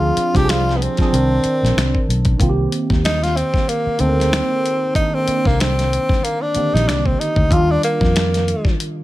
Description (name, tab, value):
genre	R&B, neo-soul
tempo	94 BPM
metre	4/4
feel	swing 58% on 16ths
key	C minor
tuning	A4 = 440 Hz
part	breathy tenor saxophone	melody	0.0-8.8 s	Bb3 to G4	-19 LUFS	equal	tape echo
part	mellow tine electric piano	accompaniment	0.0-9.0 s	D3 to Bb4	-22 LUFS	right 2 dB	overdrive, phaser
part	vintage muted fingered electric bass	bass	0.0-8.5 s	Bb1 to F2	-19 LUFS	equal	none
part	dusty soul sampler-style drum kit	drums	0.2-9.0 s	finger snaps, hi-hat, kick drum, snare drum	-20 LUFS	equal	none
room	light reverb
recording	none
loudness	-15 LUFS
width	side -16 dB against mid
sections	0.0-2.4 A section; 2.4-9.0 B section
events	tenor saxophone solo 2.4-9.0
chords	0.0 Dm7b5; 1.1 Cm9; 2.4 Cm7; 7.5 Ebmaj9